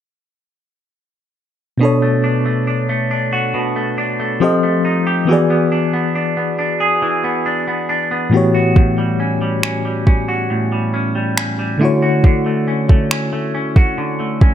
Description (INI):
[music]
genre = contemporary R&B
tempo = 69 BPM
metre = 4/4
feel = straight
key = B minor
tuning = A4 = 440 Hz
[part]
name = FM electric piano with auto-pan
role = accompaniment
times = 1.8-14.5 s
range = A2 to Eb5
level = -17 LUFS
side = left 2 dB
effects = none
[part]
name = clean electric guitar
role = arpeggios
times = 1.8-14.5 s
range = A2 to G#4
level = -19 LUFS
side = right 1 dB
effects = digital delay
[part]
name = smooth R&B drum kit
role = drums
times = 8.8-14.5 s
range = finger snaps, kick drum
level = -11 LUFS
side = right 1 dB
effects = none
[sound]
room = light reverb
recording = none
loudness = -14 LUFS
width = side -10 dB against mid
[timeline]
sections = 1.8-14.5 A section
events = none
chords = 1.8 Bm7; 4.4 F9; 5.3 E7; 8.3 A13; 11.8 Dmaj7